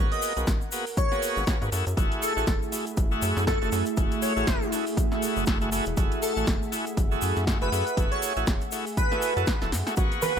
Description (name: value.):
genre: deep house.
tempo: 120 BPM.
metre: 4/4.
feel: swing 58% on 16ths.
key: unclear.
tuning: A4 = 440 Hz.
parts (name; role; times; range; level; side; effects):
warm analog pad; sustained chords; 0.0-10.4 s; A3 to F#5; -37 LUFS; right 1 dB; chorus, sidechain pumping.
bright tonewheel organ; stabs; 0.0-10.4 s; A3 to A4; -31 LUFS; right 1 dB; overdrive, slow rotary speaker, sidechain pumping, tape echo.
rubbery square bass; bass; 0.0-10.4 s; E1 to G#2; -30 LUFS; equal; sidechain pumping.
warbly tape-like pad; texture; 0.0-10.4 s; A3 to G#5; -34 LUFS; right 2 dB; chorus, built-in reverb, sidechain pumping.
airy dreamy lead; melody; 0.1-10.4 s; A4 to D#5; -30 LUFS; equal; chorus.
deep house drum kit; drums; 0.1-10.3 s; hi-hat, snare drum; -34 LUFS; equal; overdrive, small room ambience.
egg shaker; percussion; 0.1-10.4 s; none; -38 LUFS; left 4 dB; none.
electronic kick drum; drums; 0.5-10.1 s; none; -26 LUFS; equal; small room ambience.
soft round pluck; arpeggios; 10.0-10.3 s; F#4 to A#4; -33 LUFS; right 2 dB; chorus, cassette tape, sidechain pumping.
string machine, violins; texture; 10.0-10.4 s; C#6; -36 LUFS; left 2 dB; ensemble chorus.
congas; percussion; 10.2-10.3 s; none; -34 LUFS; left 4 dB; none.
room: light reverb, digital ambience.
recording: faint mains hum.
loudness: -23 LUFS.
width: side -8 dB against mid.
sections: 0.0-10.4 A section.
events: drum fill 9.6-10.0.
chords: 0.0 G#m9; 1.7 F#m9.